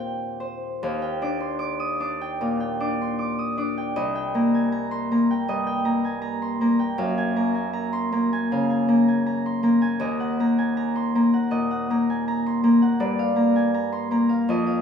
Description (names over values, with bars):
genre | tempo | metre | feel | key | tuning
classical, solo harp piece | 79 BPM | 4/4 | rubato | Eb major | A4 = 440 Hz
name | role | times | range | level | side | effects
Celtic harp | solo | 0.0-14.8 s | C2 to Eb6 | -21 LUFS | equal | none
room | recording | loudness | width
wet stone room reverb, RT60 1.4 s | none | -21 LUFS | side -7 dB against mid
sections
0.8-14.8 A section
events
none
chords
0.0 Eb69; 0.8 Ebmaj9; 4.0 Cm7; 7.0 Gbmaj9; 10.0 Ebm; 13.0 Gm7